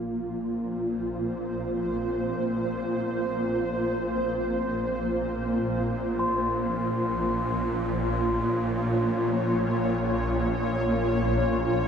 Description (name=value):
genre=dark ambient drone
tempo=free time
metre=none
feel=none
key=Bb minor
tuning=A4 = 436 Hz
part: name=granular cloud pad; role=sustained chords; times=0.0-11.9 s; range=Bb3 to Db5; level=-26 LUFS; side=equal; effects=built-in reverb, shimmer reverb
part: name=swarming drone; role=drone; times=0.0-11.9 s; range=Bb1 to Bb2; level=-30 LUFS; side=equal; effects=built-in reverb
part: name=bronze singing bowl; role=texture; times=6.2-11.9 s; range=C6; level=-33 LUFS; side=left 2 dB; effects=shimmer reverb
room=wet huge ambient reverb, RT60 8.9 s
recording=none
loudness=-24 LUFS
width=side -7 dB against mid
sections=0.0-11.9 A section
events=fade-in on synth drone 0.0-11.9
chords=0.0 Bbm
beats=free time